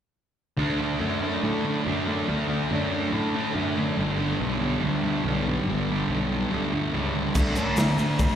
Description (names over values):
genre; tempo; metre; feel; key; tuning
garage rock duo or trio; 142 BPM; 4/4; straight; D major; A4 = 440 Hz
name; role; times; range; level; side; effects
thick fuzz guitar; riff; 0.6-8.4 s; G2 to D4; -25 LUFS; equal; distortion
fuzz picked electric bass; bass; 0.6-8.4 s; G1 to A2; -28 LUFS; equal; overdrive
raw garage drum kit; drums; 7.3-8.3 s; crash cymbal, hi-hat, kick drum, snare drum; -24 LUFS; equal; none
egg shaker; percussion; 7.4-8.3 s; none; -40 LUFS; left 4 dB; none
octave-fuzz lead guitar; melody; 7.6-8.4 s; F#4 to D5; -30 LUFS; left 2 dB; distortion, slapback echo
room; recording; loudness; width
light reverb, small room ambience; live gig heard through the venue's PA, recital hall reverb; -23 LUFS; side -9 dB against mid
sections
0.6-7.4 A section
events
none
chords
0.6 D; 4.0 G; 7.4 D